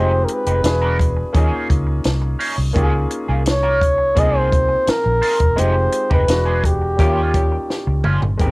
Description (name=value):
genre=lush 1970s-style soul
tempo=85 BPM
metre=4/4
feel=straight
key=unclear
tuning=A4 = 443 Hz
part: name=warm flugelhorn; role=melody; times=0.0-8.1 s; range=G4 to Eb5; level=-18 LUFS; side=equal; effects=tube saturation
part: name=warm grand piano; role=accompaniment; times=0.0-8.5 s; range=G3 to G#4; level=-25 LUFS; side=left 2 dB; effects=cassette tape
part: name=electric guitar at the edge of break-up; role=riff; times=0.0-8.5 s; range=G3 to Bb4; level=-25 LUFS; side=right 2 dB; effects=wah, cassette tape
part: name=vintage muted fingered electric bass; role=bass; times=0.0-8.5 s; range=E1 to Eb2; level=-19 LUFS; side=equal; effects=none
part: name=compact cocktail drum kit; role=drums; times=0.3-8.5 s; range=hi-hat, kick drum, snare drum, toms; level=-19 LUFS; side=equal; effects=cassette tape
part: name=warm horn section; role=stabs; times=7.0-7.2 s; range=Bb3 to G4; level=-26 LUFS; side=left 1 dB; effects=cassette tape, tape echo
room=little or no reverb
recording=home recording on cassette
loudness=-15 LUFS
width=side -25 dB against mid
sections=0.0-8.4 A section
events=band accent 5.6-8.4; drum fill 7.7-8.4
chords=0.0 Fm9; 0.6 E9; 1.3 Eb7sus4; 4.2 Ab6/C; 5.6 Fm9; 6.3 E9; 7.0 Eb9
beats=0.64 1.35 2.05 | 2.76 3.46 4.17 4.87 | 5.57 6.28 6.98 7.69 | 8.39